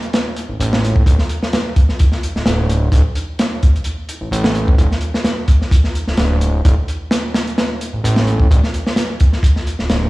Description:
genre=breakbeat, breaks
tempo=129 BPM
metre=4/4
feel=swing 54% on 16ths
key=unclear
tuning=A4 = 438 Hz
part: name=crunchy breakbeat drum kit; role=drums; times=0.0-10.0 s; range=hi-hat, kick drum, snare drum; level=-14 LUFS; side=equal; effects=none
part: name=fat analog bass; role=bass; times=0.5-10.1 s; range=D1 to A1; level=-16 LUFS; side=equal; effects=none
room=little or no reverb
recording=played on a big sound system in a bare room, stone room reverb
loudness=-13 LUFS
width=side -20 dB against mid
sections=0.0-10.1 A section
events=none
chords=none

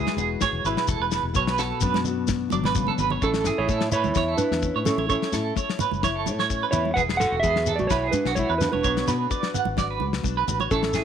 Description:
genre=highlife guitar band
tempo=128 BPM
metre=4/4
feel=straight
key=A major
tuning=A4 = 440 Hz
part: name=fingerpicked steel-string acoustic guitar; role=accompaniment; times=0.0-11.0 s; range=A2 to C#5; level=-31 LUFS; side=left 11 dB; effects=none
part: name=clean electric guitar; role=arpeggios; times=0.0-11.0 s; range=F#4 to F#5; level=-27 LUFS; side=right 10 dB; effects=tremolo, tape echo
part: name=fingered electric bass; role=bass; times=0.0-11.0 s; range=E1 to B2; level=-30 LUFS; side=equal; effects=none
part: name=damped 70s drum kit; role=drums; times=0.1-11.0 s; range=kick drum, snare drum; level=-29 LUFS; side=left 4 dB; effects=none
part: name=congas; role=percussion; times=0.1-10.7 s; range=none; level=-32 LUFS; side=right 10 dB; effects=none
part: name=shekere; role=percussion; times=0.2-11.0 s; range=none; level=-32 LUFS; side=left 5 dB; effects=none
part: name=mellow electric guitar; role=melody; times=3.2-11.0 s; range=C#4 to F#5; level=-24 LUFS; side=right 2 dB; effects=none
room=light reverb, small room ambience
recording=1960s-style stereo with parts hard left and right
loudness=-21 LUFS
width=side -8 dB against mid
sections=0.0-3.2 A section; 3.2-11.0 B section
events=drum fill 2.8-3.2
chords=0.0 Eadd9; 1.4 Bm; 3.2 A; 7.0 Eadd9; 8.8 Bm

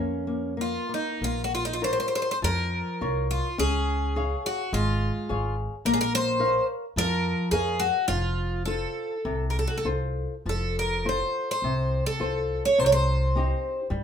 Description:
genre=fado-style ballad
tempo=94-110 BPM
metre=4/4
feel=rubato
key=Bb minor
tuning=A4 = 442 Hz
part: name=picked twelve-string acoustic guitar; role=melody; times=0.0-13.9 s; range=Db4 to Db5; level=-26 LUFS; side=equal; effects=none
part: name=flamenco guitar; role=accompaniment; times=0.0-14.0 s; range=C3 to F5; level=-30 LUFS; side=left 2 dB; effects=none
part: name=upright bass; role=bass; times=0.0-14.0 s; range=F1 to G2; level=-29 LUFS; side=equal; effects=none
room=moderate studio reverb, RT60 0.6 s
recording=minimal, uncompressed stereo recording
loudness=-24 LUFS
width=side -8 dB against mid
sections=0.0-1.2 A section; 1.2-14.0 B section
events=none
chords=0.0 Bbm; 3.6 Db; 5.9 Bbm; 8.1 F; 12.8 Cm

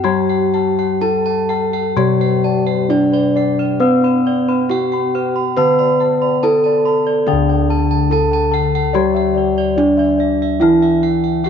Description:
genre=Javanese gamelan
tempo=61-72 BPM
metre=4/4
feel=straight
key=D slendro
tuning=A4 = 436 Hz
part: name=gamelan-type bronze metallophone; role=melody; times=0.0-11.5 s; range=C4-45c to C5-45c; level=-16 LUFS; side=right 2 dB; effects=tape echo
part: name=gamelan-type bronze metallophone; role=accompaniment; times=0.0-11.5 s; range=D3 to C4-45c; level=-20 LUFS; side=left 12 dB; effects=none
part: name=gamelan-type bronze metallophone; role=arpeggios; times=0.0-11.5 s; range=C5-45c to C6-45c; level=-23 LUFS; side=right 5 dB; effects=tape echo
part: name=gamelan-type bossed gongs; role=bass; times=0.0-11.5 s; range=D2 to C5-45c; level=-22 LUFS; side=equal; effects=none
part: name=gamelan-type bossed gongs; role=arpeggios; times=0.1-11.5 s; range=C5-45c to C6-45c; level=-24 LUFS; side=left 10 dB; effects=none
room=moderate spring reverb, RT60 2.3 s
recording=1960s-style stereo, nothing above 7.6 kHz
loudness=-13 LUFS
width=side -7 dB against mid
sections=0.0-7.3 A section; 7.3-11.5 B section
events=none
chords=none

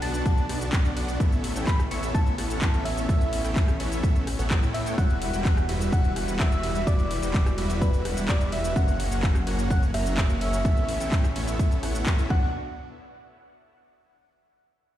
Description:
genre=EDM, festival progressive house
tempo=127 BPM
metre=4/4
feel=straight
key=unclear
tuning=A4 = 440 Hz
part: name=soft struck synth lead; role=melody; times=0.0-12.5 s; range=B4 to C#6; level=-33 LUFS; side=equal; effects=chorus, dub echo
part: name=dark studio string section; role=sustained chords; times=0.0-12.5 s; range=B2 to F#4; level=-37 LUFS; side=left 1 dB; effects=sidechain pumping
part: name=dense compressed supersaw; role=riff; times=0.0-12.5 s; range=G3 to A#5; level=-32 LUFS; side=equal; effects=sidechain pumping, dub echo
part: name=wide detuned saw bass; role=bass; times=0.0-12.5 s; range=E1 to A2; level=-30 LUFS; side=equal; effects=chorus, sidechain pumping
part: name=house drum kit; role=drums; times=0.0-12.3 s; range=cabasa, handclaps, hi-hat, ride cymbal, rim click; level=-34 LUFS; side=equal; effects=overdrive
part: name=electronic kick drum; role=drums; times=0.3-12.4 s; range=none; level=-22 LUFS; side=equal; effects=overdrive
room=digital ambience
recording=played on a big sound system in a bare room, stone room reverb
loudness=-22 LUFS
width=side -12 dB against mid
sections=0.0-12.5 A section; 12.5-14.4 B section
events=drop 0.0-12.5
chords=0.0 Bm; 1.2 Aadd9; 5.0 Emadd9; 8.8 F#; 10.7 Aadd9; 12.3 Bm; 12.5 N.C.

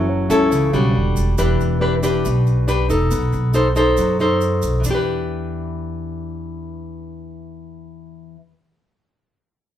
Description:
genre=bossa nova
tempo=139 BPM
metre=4/4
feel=straight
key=E minor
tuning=A4 = 440 Hz
part: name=growling trombone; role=second line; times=0.0-1.4 s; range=D3 to F#3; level=-29 LUFS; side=right 4 dB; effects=none
part: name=nylon-string guitar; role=accompaniment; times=0.0-8.5 s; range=B2 to C5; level=-19 LUFS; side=left 1 dB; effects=none
part: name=upright bass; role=bass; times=0.0-8.4 s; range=E1 to F#2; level=-21 LUFS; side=right 1 dB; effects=none
part: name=tube shaker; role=percussion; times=0.3-4.9 s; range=none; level=-36 LUFS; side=right 5 dB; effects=none
room=moderate studio reverb, RT60 0.8 s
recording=heard from further back in the room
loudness=-16 LUFS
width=side -10 dB against mid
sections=0.0-1.4 A section; 1.4-4.8 B section; 4.8-8.3 C section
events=none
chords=0.0 F#m7; 0.9 Em9; 1.4 Em7; 3.1 B7b9; 4.8 Em7

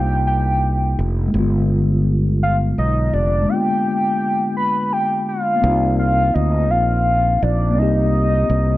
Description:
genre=slow six-eight R&B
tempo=56 BPM (dotted quarters)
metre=6/8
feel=straight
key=C minor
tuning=A4 = 440 Hz
part: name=soft octave-layered synth lead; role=melody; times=0.0-8.8 s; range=D5 to B5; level=-20 LUFS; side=equal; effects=chorus
part: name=mellow tine electric piano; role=accompaniment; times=0.0-8.8 s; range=D3 to G4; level=-22 LUFS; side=left 2 dB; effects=medium stereo tremolo
part: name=fretless electric bass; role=bass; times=0.0-8.8 s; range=F1 to D2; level=-18 LUFS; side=right 1 dB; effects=none
room=light reverb, digital ambience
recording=none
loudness=-15 LUFS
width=side -16 dB against mid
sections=0.0-5.6 A section; 5.6-8.8 B section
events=none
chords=0.0 Cm11; 1.3 G7b9; 5.6 Cm11

